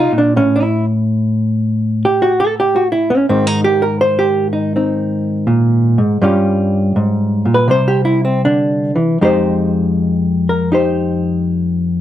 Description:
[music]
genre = solo jazz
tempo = 81 BPM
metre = 4/4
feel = swing 68% on 8ths, rubato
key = unclear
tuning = A4 = 440 Hz
[part]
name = hollow-body jazz guitar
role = solo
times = 0.0-12.0 s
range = F2 to C5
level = -12 LUFS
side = equal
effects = none
[sound]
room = moderate club reverb, RT60 0.8 s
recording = none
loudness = -12 LUFS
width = side -12 dB against mid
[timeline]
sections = 0.0-12.0 A section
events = hollow-body jazz guitar solo 0.0-12.0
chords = 0.4 N.C.; 3.3 Ab; 6.2 Gm7b5; 7.7 C; 9.2 Fm9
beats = | 0.37 1.11 1.84 2.56 | 3.29 4.02 4.75 5.48 | 6.21 6.95 7.69 8.45 | 9.21 9.97 10.72 11.46

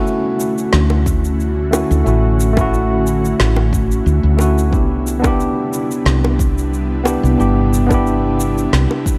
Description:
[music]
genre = sunset chillout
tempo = 90 BPM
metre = 4/4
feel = swing 54% on 16ths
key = D major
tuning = A4 = 440 Hz
[part]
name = tine electric piano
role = accompaniment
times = 0.0-9.2 s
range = A3 to G4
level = -20 LUFS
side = equal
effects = delay
[part]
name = ethereal airy pad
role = sustained chords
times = 0.0-9.2 s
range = C3 to F#4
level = -26 LUFS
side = equal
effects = ensemble chorus, built-in reverb
[part]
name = electronic shaker and snare drum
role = drums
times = 0.1-9.2 s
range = none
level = -26 LUFS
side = equal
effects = small room reverb
[part]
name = woody fretless electric bass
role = bass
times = 0.7-8.9 s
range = G1 to D2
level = -18 LUFS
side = equal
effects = lush chorus
[part]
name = bongos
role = percussion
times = 0.9-9.0 s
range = none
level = -23 LUFS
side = equal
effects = none
[part]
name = electronic kick drum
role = drums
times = 1.1-9.2 s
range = none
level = -21 LUFS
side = equal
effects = small room reverb
[sound]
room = light reverb, digital ambience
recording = none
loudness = -16 LUFS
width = mono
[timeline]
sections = 0.0-9.2 A section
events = none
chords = 0.0 Dmaj9; 4.7 Cmaj7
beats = 0.06 0.73 1.40 | 2.06 2.73 3.40 4.06 | 4.73 5.40 6.06 6.73 | 7.40 8.06 8.73

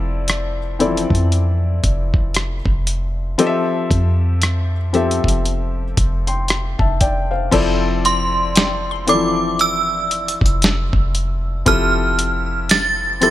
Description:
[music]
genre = contemporary R&B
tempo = 58 BPM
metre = 4/4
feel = swing 58% on 16ths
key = unclear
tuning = A4 = 440 Hz
[part]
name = felt-muted upright piano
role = accompaniment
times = 0.0-13.3 s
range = E3 to C6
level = -20 LUFS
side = left 3 dB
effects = none
[part]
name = clean 808-style bass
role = bass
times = 0.0-13.3 s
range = F1 to F2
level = -20 LUFS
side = equal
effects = none
[part]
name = dusty soul sampler-style drum kit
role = drums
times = 0.3-13.3 s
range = crash cymbal, hi-hat, kick drum, rim click, snare drum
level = -18 LUFS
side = equal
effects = none
[part]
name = synth chime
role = melody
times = 8.1-13.3 s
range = C6 to A6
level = -18 LUFS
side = right 3 dB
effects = ensemble chorus
[part]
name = glassy wavetable pluck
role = texture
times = 8.6-11.6 s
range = G5 to C6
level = -33 LUFS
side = equal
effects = chorus, ping-pong delay
[sound]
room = little or no reverb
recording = none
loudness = -15 LUFS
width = side -14 dB against mid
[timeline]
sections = 0.0-7.5 A section; 7.5-13.3 B section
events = none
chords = 0.0 Dm9/F; 3.4 Fmaj7; 7.5 Dm9/F; 11.7 Fmaj7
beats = 0.28 1.32 2.35 | 3.39 4.42 5.46 6.49 | 7.53 8.56 9.59 10.63 | 11.66 12.70

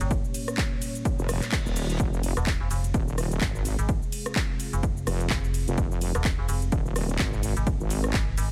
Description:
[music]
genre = bass house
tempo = 127 BPM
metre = 4/4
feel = swing 57% on 16ths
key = F minor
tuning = A4 = 441 Hz
[part]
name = deep dark ambient pad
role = sustained chords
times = 0.0-8.5 s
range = Bb3 to F5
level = -40 LUFS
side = equal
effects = chorus, built-in reverb, sidechain pumping
[part]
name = metallic FM bass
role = bass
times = 0.0-8.5 s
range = Eb1 to Ab1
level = -30 LUFS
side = equal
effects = overdrive, sidechain pumping
[part]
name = house drum kit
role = drums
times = 0.0-8.5 s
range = cabasa, handclaps, hi-hat, ride cymbal, rim click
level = -34 LUFS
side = equal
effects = overdrive
[part]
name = electronic kick drum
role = drums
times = 0.1-8.2 s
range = none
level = -31 LUFS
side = equal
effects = overdrive
[part]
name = reverse cymbal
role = sound effects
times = 1.2-2.0 s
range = none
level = -43 LUFS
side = equal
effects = none
[part]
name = wobble bass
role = bass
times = 1.2-8.1 s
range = Eb1 to Ab1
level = -30 LUFS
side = equal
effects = chorus, tube saturation, sidechain pumping
[sound]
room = digital ambience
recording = none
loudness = -27 LUFS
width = mono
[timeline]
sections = 0.0-8.5 A section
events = reverse cymbal 1.2-2.0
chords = 0.0 Eb; 2.0 Fm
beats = | 0.11 0.58 1.05 1.52 | 2.00 2.47 2.94 3.42 | 3.89 4.36 4.83 5.30 | 5.78 6.25 6.72 7.20 | 7.67 8.14

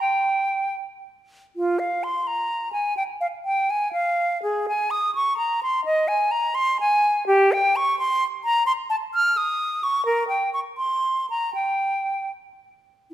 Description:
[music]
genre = classical, baroque-style fantasia for unaccompanied flute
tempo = 71-88 BPM (dotted quarters)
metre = 6/8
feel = rubato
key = unclear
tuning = A4 = 440 Hz
[part]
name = silver concert flute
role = solo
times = 0.0-13.1 s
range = F4 to F6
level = -20 LUFS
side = equal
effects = none
[sound]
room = moderate recital hall reverb, RT60 1.7 s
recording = none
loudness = -20 LUFS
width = side -12 dB against mid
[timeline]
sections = 0.0-1.5 A section; 1.5-13.1 A section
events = none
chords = none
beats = | 0.00 0.77 | 1.54 2.26 | 2.97 3.68 | 4.42 5.14 | 5.84 6.54 | 7.26 7.97 | 8.66 9.35 | 10.05 10.78 | 11.54 12.31 | 13.11

